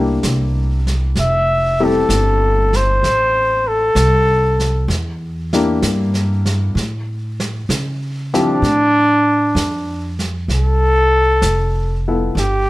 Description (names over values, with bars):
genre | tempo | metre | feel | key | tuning
jazz ballad | 64 BPM | 4/4 | swing 68% on 8ths | unclear | A4 = 438 Hz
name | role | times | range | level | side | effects
breathy trumpet | melody | 0.0-12.7 s | D4 to E5 | -15 LUFS | equal | none
warm grand piano | accompaniment | 0.0-12.4 s | E#3 to A4 | -20 LUFS | left 3 dB | none
upright bass | bass | 0.0-12.7 s | F1 to C#3 | -18 LUFS | equal | none
vintage brush drum kit | drums | 0.2-12.7 s | brushed snare drum, hi-hat, snare drum | -25 LUFS | right 2 dB | none
room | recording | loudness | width
light reverb | none | -14 LUFS | side -18 dB against mid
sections
0.0-8.6 A section; 8.6-12.7 B section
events
trumpet solo 0.0-8.6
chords
0.0 C7; 1.2 Fmaj9; 4.9 Em7b5; 6.8 A7alt; 8.6 Dm7